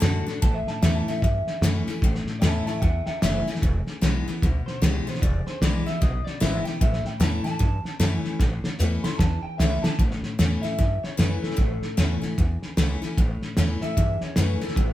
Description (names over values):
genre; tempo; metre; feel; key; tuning
rockabilly; 151 BPM; 4/4; swing 62% on 8ths; A mixolydian; A4 = 440 Hz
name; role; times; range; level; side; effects
electric guitar through a small old amp; melody; 0.0-14.9 s; G4 to C6; -32 LUFS; equal; none
picked steel-string acoustic guitar; accompaniment; 0.0-14.9 s; E2 to F#4; -29 LUFS; left 3 dB; none
upright bass; bass; 0.0-14.9 s; E1 to G2; -26 LUFS; equal; none
cloth-damped thuddy drum kit; drums; 0.0-14.9 s; hi-hat, kick drum, snare drum; -25 LUFS; equal; none
room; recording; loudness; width
light reverb; band playing live in one room; -21 LUFS; side -14 dB against mid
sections
0.0-10.0 A section; 10.0-14.9 B section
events
clean electric guitar solo 0.0-10.0; drum fill 8.4-10.0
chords
0.4 A; 3.6 E; 6.8 A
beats
0.03 | 0.43 0.83 1.23 1.63 | 2.03 2.43 2.83 3.23 | 3.63 4.03 4.42 4.82 | 5.22 5.62 6.02 6.42 | 6.81 7.21 7.61 8.01 | 8.40 8.80 9.20 9.60 | 9.99 10.39 10.79 11.19 | 11.59 11.98 12.38 12.78 | 13.18 13.57 13.97 14.37 | 14.77